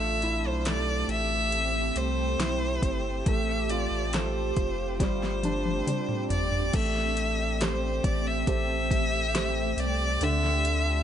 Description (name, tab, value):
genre	pop ballad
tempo	69 BPM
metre	4/4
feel	straight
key	A minor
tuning	A4 = 440 Hz
part	clear violin	melody	0.0-11.0 s	C5 to E5	-30 LUFS	left 1 dB	digital delay
part	warm concert grand piano	accompaniment	0.0-11.0 s	D3 to C5	-34 LUFS	right 2 dB	none
part	shimmering ambient pad	sustained chords	0.0-11.0 s	D3 to A4	-33 LUFS	right 2 dB	chorus, built-in reverb
part	sub bass with octave	bass	0.0-11.0 s	F1 to D2	-31 LUFS	equal	none
part	smooth R&B drum kit	drums	0.2-10.9 s	crash cymbal, hi-hat, kick drum, snare drum, toms	-30 LUFS	equal	none
room	little or no reverb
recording	nothing above 10.8 kHz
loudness	-25 LUFS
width	side -9 dB against mid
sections	0.0-6.7 A section; 6.7-11.0 B section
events	drum fill 5.0-6.7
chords	0.0 Am7; 3.3 Fadd9/A; 5.0 Gsus4; 6.7 Am7; 10.2 Dm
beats	0.65 1.52 2.39 | 3.26 4.13 5.00 5.87 | 6.74 7.61 8.48 9.35 | 10.21